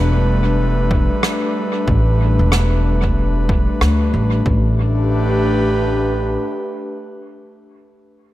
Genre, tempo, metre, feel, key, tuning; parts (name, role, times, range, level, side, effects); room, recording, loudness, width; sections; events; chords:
ambient dub; 93 BPM; 4/4; swing 59% on 16ths; A4 = 440 Hz
airy breathy pad; sustained chords; 0.0-7.8 s; G3 to B4; -20 LUFS; left 1 dB; chorus
upright bass; bass; 0.0-6.4 s; E1 to D2; -16 LUFS; equal
electronic kick drum; drums; 0.9-4.6 s; -19 LUFS; equal; overdrive
rim click; drums; 1.2-4.0 s; -24 LUFS; right 1 dB; dub echo
light reverb, small room ambience; -14 LUFS; side -15 dB against mid
0.0-4.5 A section; 4.5-7.0 B section
filter sweep on upright bass 0.0-4.5
0.0 G; 4.5 Asus2